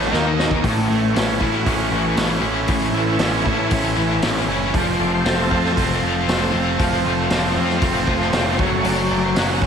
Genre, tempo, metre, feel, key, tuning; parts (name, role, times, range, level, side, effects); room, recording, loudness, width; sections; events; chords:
classic rock; 117 BPM; 4/4; straight; A4 = 440 Hz
mellow reed electric piano; accompaniment; 0.0-0.5 s; D#4 to D#5; -30 LUFS; right 5 dB; fast tremolo, slapback echo
bright tonewheel organ; sustained chords; 0.0-9.7 s; E3 to D#5; -24 LUFS; right 1 dB; slow rotary speaker, overdrive, chorus vibrato
cranked stack guitar; riff; 0.0-9.7 s; A2 to F4; -22 LUFS; left 10 dB; overdrive, harmonic tremolo, slapback echo
cranked stack guitar; riff; 0.0-9.7 s; A2 to F4; -23 LUFS; right 10 dB; overdrive, slapback echo
growling picked electric bass; bass; 0.0-9.7 s; F1 to A2; -24 LUFS; equal; overdrive
vintage drum kit; drums; 0.0-9.7 s; hi-hat, kick drum, snare drum; -24 LUFS; equal
wet recital hall reverb, RT60 1.6 s, small room ambience; big arena sound; -16 LUFS; side -7 dB against mid
0.6-9.7 A section
drum fill 0.1-0.6
0.1 D#5; 0.6 A; 4.7 F; 8.6 F#m